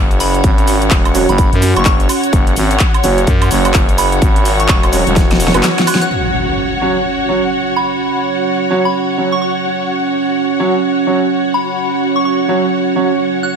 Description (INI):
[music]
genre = bass house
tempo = 127 BPM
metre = 4/4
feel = swing 61% on 16ths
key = unclear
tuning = A4 = 440 Hz
[part]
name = deep dark ambient pad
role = sustained chords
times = 0.1-13.6 s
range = F#3 to F#5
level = -18 LUFS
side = right 4 dB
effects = chorus, built-in reverb, sidechain pumping
[part]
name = growling FM bass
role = bass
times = 0.0-5.6 s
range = E1 to F#2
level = -15 LUFS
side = equal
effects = tube saturation, sidechain pumping
[part]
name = rich symphonic string section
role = texture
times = 0.0-13.6 s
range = F#4 to F#5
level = -20 LUFS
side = left 2 dB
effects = sidechain pumping
[part]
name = big-room dance drum kit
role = drums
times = 0.1-6.1 s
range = cabasa, handclaps, hi-hat, snare drum, woodblock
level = -17 LUFS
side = equal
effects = overdrive, low-pass filter on hats, studio reverb, low-pass filter on perc, low-pass filter on snare
[part]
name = soft synth bell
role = melody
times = 0.2-13.5 s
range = B5 to F#6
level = -21 LUFS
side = equal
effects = chorus, phaser, analog delay
[part]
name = electronic kick drum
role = drums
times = 0.4-5.3 s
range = none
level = -13 LUFS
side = equal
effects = overdrive, studio reverb
[part]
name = clear grand piano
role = stabs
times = 1.1-13.1 s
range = F#3 to C#5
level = -20 LUFS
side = right 3 dB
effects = sidechain pumping, low-pass filter, analog delay
[part]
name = impact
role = sound effects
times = 6.1-8.0 s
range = none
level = -22 LUFS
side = left 1 dB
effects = none
[sound]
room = moderate plate reverb, RT60 1.1 s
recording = dreamy mix soaked in reverb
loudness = -11 LUFS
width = side -6 dB against mid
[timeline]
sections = 0.0-6.1 A section; 6.1-13.6 B section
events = filter sweep on grand piano 0.0-6.1; drum fill 5.2-6.1; impact 6.1-8.0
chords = 0.0 F#5